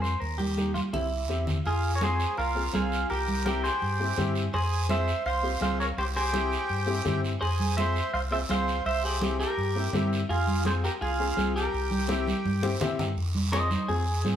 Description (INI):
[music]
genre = latin, cumbia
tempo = 167 BPM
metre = 4/4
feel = straight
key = F harmonic minor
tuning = A4 = 440 Hz
[part]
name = clean electric guitar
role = melody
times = 0.0-14.4 s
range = Eb4 to F5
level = -30 LUFS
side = equal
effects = spring reverb
[part]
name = warm upright piano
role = accompaniment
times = 0.0-14.4 s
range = Bb3 to G5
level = -33 LUFS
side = left 6 dB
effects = none
[part]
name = fingered electric bass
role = bass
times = 0.0-14.4 s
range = C2 to Bb2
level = -30 LUFS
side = equal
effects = none
[part]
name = guiro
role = percussion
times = 0.0-14.4 s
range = none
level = -38 LUFS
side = right 4 dB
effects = none
[part]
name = congas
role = percussion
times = 0.2-14.4 s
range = none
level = -32 LUFS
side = right 2 dB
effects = none
[part]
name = accordion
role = second line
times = 1.7-12.8 s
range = F4 to C5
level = -34 LUFS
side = right 2 dB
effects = none
[sound]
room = moderate stone room reverb, RT60 1.1 s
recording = band playing live in one room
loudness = -25 LUFS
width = side -9 dB against mid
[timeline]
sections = 0.0-1.7 A section; 1.7-13.2 B section; 13.2-14.4 C section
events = drum fill 0.6-1.7, 12.5-13.2; upright piano fill 12.5-13.2; clean electric guitar solo 13.2-14.4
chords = 0.2 Eb; 0.9 C; 1.7 Fm; 3.1 C7; 4.5 Fm; 6.0 C; 7.4 Fm; 8.9 C7; 10.3 Fm; 11.7 C7; 13.2 Fm